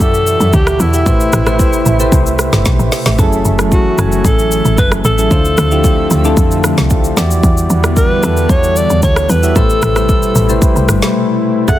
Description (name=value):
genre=amapiano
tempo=113 BPM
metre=4/4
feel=straight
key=unclear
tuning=A4 = 439 Hz
part: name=breathy alto saxophone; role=melody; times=0.0-11.8 s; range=E4 to F#5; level=-16 LUFS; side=equal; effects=digital delay
part: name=soft electric-piano-like synth keys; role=accompaniment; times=0.0-11.8 s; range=D3 to G#5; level=-17 LUFS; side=left 1 dB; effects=chorus, tremolo
part: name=airy breathy pad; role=sustained chords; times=0.0-11.8 s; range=B2 to E5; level=-19 LUFS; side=equal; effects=chorus
part: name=woody log drum bass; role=bass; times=0.0-11.8 s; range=F#1 to F#2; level=-14 LUFS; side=equal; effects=none
part: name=deep house drum kit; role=drums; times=0.0-11.8 s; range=hi-hat, kick drum, rim click, shaker, snare drum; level=-14 LUFS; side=equal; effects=soft clipping on snare
part: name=marimba with medium mallets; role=stabs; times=11.7-11.8 s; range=G#4 to E5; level=-16 LUFS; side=right 8 dB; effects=none
room=digital ambience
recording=dense, heavily limited modern master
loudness=-9 LUFS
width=side -13 dB against mid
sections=0.0-11.8 A section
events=drum fill 2.7-3.2; break 11.2-11.7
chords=0.0 Em9; 1.1 Am9; 3.2 F#m9; 5.3 Dm9; 7.2 Em9; 9.6 Am9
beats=0.00 0.53 | 1.06 1.59 2.12 2.66 | 3.19 3.72 4.25 4.78 | 5.31 5.84 6.37 6.90 | 7.43 7.96 8.50 9.03 | 9.56 10.09 10.62 11.15 | 11.68